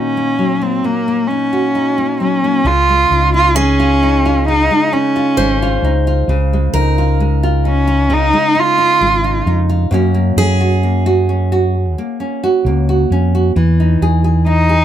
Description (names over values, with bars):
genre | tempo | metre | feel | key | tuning
acoustic folk-pop ballad | 66 BPM | 4/4 | straight | Db major | A4 = 440 Hz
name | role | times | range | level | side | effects
warm cello | melody | 0.0-14.8 s | Bb3 to F4 | -14 LUFS | right 1 dB | none
nylon-string guitar | accompaniment | 0.0-14.8 s | Gb2 to G#4 | -17 LUFS | equal | none
fingered electric bass | bass | 2.6-14.8 s | Ab1 to Gb2 | -14 LUFS | equal | none
picked steel-string acoustic guitar | arpeggios | 3.6-13.9 s | Ab4 to C5 | -22 LUFS | right 1 dB | none
room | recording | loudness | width
little or no reverb | close, detailed microphones | -11 LUFS | side -10 dB against mid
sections
0.0-2.6 A section; 2.6-14.8 B section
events
none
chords
0.0 Gb6/Bb; 2.6 Dbadd9; 9.9 Gb; 13.6 Emaj7